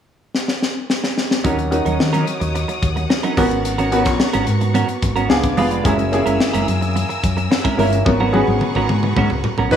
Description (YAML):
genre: polished 1980s jazz-funk pop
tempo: 109 BPM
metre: 4/4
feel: straight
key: G# minor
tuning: A4 = 440 Hz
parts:
  - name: tight funk drum kit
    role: drums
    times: 0.3-9.8 s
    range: hi-hat, kick drum, snare drum, toms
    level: -20 LUFS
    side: left 2 dB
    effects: gated reverb
  - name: clear baby grand piano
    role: accompaniment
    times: 1.4-9.8 s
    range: A#3 to A#4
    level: -20 LUFS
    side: left 1 dB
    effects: lush chorus
  - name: clear studio string section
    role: sustained chords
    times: 1.4-9.8 s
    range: B3 to E6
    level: -28 LUFS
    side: equal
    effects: none
  - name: clean electric guitar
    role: riff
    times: 1.4-9.8 s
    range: F#3 to B4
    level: -22 LUFS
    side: right 5 dB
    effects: analog chorus
  - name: fingered electric bass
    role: bass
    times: 1.4-9.7 s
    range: E#1 to D#3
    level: -21 LUFS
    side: left 1 dB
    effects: none
  - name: warm horn section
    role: second line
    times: 9.7-9.8 s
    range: F#3 to B4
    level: -12 LUFS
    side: right 1 dB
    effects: none
room: light reverb, small room ambience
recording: studio ambience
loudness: -15 LUFS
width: side -9 dB against mid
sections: 0.0-1.4 A section; 1.4-9.8 B section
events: drum fill 0.3-1.4, 8.1-9.8; band accent 8.1-9.8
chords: 0.0 N.C.; 1.4 D#m7; 3.4 G#m11; 5.3 C#7b9; 5.9 F#9; 8.1 G#m11